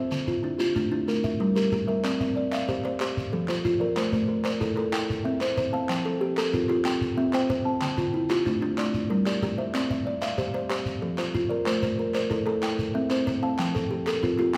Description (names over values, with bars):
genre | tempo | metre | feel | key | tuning
southern african traditional, mbira-style interlocking cycle | 125 BPM (dotted quarters) | 12/8 | straight | C mixolydian | A4 = 439 Hz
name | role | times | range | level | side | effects
kalimba | arpeggios | 0.0-14.6 s | D3 to G5 | -29 LUFS | equal | none
kalimba | arpeggios | 0.0-14.6 s | D3 to A5 | -31 LUFS | equal | none
shekere | percussion | 0.1-14.6 s | none | -36 LUFS | equal | none
group handclap | percussion | 2.0-14.6 s | none | -41 LUFS | equal | none
room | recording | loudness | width
moderate recital hall reverb, RT60 1.5 s | recorded in a church or concert hall | -26 LUFS | mono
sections
0.0-2.0 A section; 2.0-14.6 B section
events
none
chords
0.1 Dm; 1.1 Gm; 2.0 C; 3.0 F; 4.0 Am; 4.9 C; 5.9 F; 6.9 C; 7.8 Dm; 8.8 Gm; 9.7 C; 10.7 F; 11.7 Am; 12.6 C; 13.6 F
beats
| 0.11 0.59 1.08 1.56 | 2.04 2.53 3.01 3.49 | 3.97 4.45 4.93 5.42 | 5.90 6.38 6.86 7.34 | 7.82 8.30 8.78 9.26 | 9.74 10.22 10.70 11.19 | 11.67 12.15 12.63 13.11 | 13.59 14.07 14.55